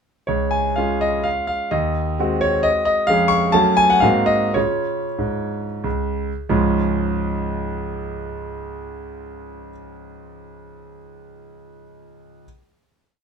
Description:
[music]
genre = classical, romantic triple-time dance for piano with dotted rhythms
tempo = 86-142 BPM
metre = 3/4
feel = rubato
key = Db major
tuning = A4 = 440 Hz
[part]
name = clear concert grand piano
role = solo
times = 0.3-12.5 s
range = Db2 to Db6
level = -18 LUFS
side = equal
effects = none
[sound]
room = moderate small room reverb, RT60 0.5 s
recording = minimal, uncompressed stereo recording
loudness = -17 LUFS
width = side -6 dB against mid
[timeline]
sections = 0.3-6.5 A section; 6.5-10.4 final chord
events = slowing down 2.4-6.5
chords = 0.3 Db; 1.7 Ab7/Eb; 3.1 Db/F; 3.5 Gbm; 4.0 Ab13; 4.6 Db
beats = | 0.28 0.78 1.26 | 1.73 2.19 2.65 | 3.08 3.54 4.04 | 4.57 5.19 5.85 | 6.50 7.14 7.79 | 8.42 9.07 9.75

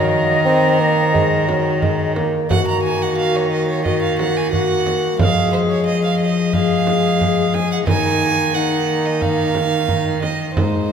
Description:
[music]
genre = classical, renaissance-style consort dance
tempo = 89 BPM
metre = 4/4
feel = straight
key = Eb dorian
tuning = A4 = 440 Hz
[part]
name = mellow tenor recorder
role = melody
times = 0.0-10.9 s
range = Eb4 to Eb5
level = -22 LUFS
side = left 3 dB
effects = none
[part]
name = rich violin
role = second line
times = 0.0-10.9 s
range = Bb4 to Bb5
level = -22 LUFS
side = right 6 dB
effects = none
[part]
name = mellow bassoon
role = accompaniment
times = 0.0-10.9 s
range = Gb3 to C4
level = -22 LUFS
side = equal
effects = none
[part]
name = rich cello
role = bass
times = 0.0-10.9 s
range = Ab2 to F3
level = -21 LUFS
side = left 1 dB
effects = none
[part]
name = frame drum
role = percussion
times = 1.1-10.9 s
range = none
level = -23 LUFS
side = right 2 dB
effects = none
[sound]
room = wet church reverb, RT60 3.6 s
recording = none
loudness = -15 LUFS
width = side -7 dB against mid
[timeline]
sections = 0.0-2.5 A section; 2.5-10.9 B section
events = none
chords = 0.0 Ebm; 5.2 Fm; 7.9 Eb5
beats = 0.46 1.14 1.82 | 2.50 3.18 3.85 4.52 | 5.19 5.86 6.53 7.20 | 7.87 8.54 9.21 9.89 | 10.57

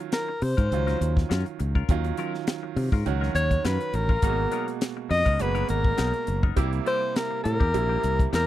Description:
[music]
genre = electric jazz fusion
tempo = 102 BPM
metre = 4/4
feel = swing 53% on 16ths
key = unclear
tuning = A4 = 440 Hz
[part]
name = bright grand piano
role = accompaniment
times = 0.0-8.5 s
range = Cb3 to Gb4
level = -32 LUFS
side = right 13 dB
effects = none
[part]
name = clean electric guitar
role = stabs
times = 0.0-8.5 s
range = Gb3 to Bb4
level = -36 LUFS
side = left 13 dB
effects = wide subtle chorus
[part]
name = breathy alto saxophone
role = melody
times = 0.1-8.5 s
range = Bb4 to Eb5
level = -26 LUFS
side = left 2 dB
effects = slapback echo
[part]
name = tight funk drum kit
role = drums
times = 0.1-8.5 s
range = hi-hat, kick drum, snare drum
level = -25 LUFS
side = left 1 dB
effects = none
[part]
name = modern bright fingered electric bass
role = bass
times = 0.4-8.4 s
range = Gb1 to C3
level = -26 LUFS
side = equal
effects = none
[sound]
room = little or no reverb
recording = dry, close 1970s-style studio recording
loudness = -22 LUFS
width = side -14 dB against mid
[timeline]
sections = 0.0-8.5 A section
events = alto saxophone solo 0.0-8.5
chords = 0.0 Ebm9; 4.2 Abm9; 6.6 C7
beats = 0.13 0.72 1.30 | 1.89 2.48 3.06 3.65 | 4.24 4.82 5.41 5.99 | 6.58 7.16 7.75 8.33

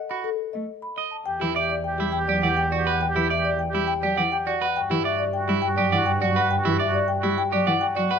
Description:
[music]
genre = classical, minimalist pattern music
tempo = 103 BPM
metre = 3/4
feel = straight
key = unclear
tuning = A4 = 440 Hz
[part]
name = marimba with medium mallets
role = melody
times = 0.0-8.2 s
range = G4 to B5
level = -25 LUFS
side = left 6 dB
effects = none
[part]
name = clean electric guitar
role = arpeggios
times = 0.1-8.2 s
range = E4 to D#5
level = -26 LUFS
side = right 9 dB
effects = none
[part]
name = warm cello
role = accompaniment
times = 0.5-8.1 s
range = E3 to A3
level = -28 LUFS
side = right 1 dB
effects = none
[part]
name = warm oboe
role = second line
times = 1.3-8.0 s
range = F#4 to G4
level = -30 LUFS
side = right 4 dB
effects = none
[part]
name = warm double bass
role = bass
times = 1.3-8.1 s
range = E2 to G2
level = -29 LUFS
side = right 4 dB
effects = none
[sound]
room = light reverb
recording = minimal, uncompressed stereo recording, lossy compression artefacts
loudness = -21 LUFS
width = side -7 dB against mid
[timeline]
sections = 0.0-1.3 A section; 1.3-8.2 B section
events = none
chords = 0.0 B7; 1.3 Em7; 4.8 Gmaj7(no3)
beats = 0.10 0.68 | 1.26 1.85 2.43 | 3.01 3.59 4.18 | 4.76 5.34 5.92 | 6.51 7.09 7.67

